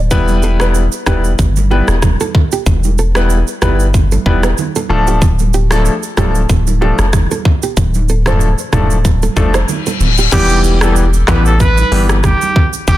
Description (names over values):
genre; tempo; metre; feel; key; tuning
afrobeats; 94 BPM; 4/4; swing 55% on 16ths; unclear; A4 = 440 Hz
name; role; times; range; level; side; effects
nylon-string guitar; riff; 0.0-10.3 s; G4 to C5; -22 LUFS; right 6 dB; ping-pong delay
punchy sub bass; bass; 0.0-13.0 s; D1 to A1; -13 LUFS; equal; none
bright concert grand piano; accompaniment; 0.1-12.1 s; E3 to B4; -18 LUFS; left 2 dB; none
glitchy drum kit; drums; 0.1-13.0 s; crash cymbal, handclaps, hi-hat, kick drum, rim click, shaker, toms; -15 LUFS; equal; soft clipping on snare
congas; percussion; 0.1-13.0 s; none; -22 LUFS; right 7 dB; none
reverse cymbal and impact; sound effects; 9.7-12.9 s; none; -21 LUFS; left 4 dB; none
clear trumpet; melody; 10.3-13.0 s; G4 to B4; -17 LUFS; right 1 dB; ping-pong delay
room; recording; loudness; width
small room ambience; dense, heavily limited modern master; -10 LUFS; side -14 dB against mid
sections
0.0-10.3 A section; 10.3-13.0 B section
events
reverse cymbal 9.7-10.3; impact 10.3-12.9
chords
0.1 Em; 4.9 Dm; 10.3 Em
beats
| 0.11 0.75 1.39 2.02 | 2.66 3.30 3.94 4.58 | 5.22 5.86 6.49 7.13 | 7.77 8.41 9.05 9.69 | 10.32 10.96 11.60 12.24 | 12.88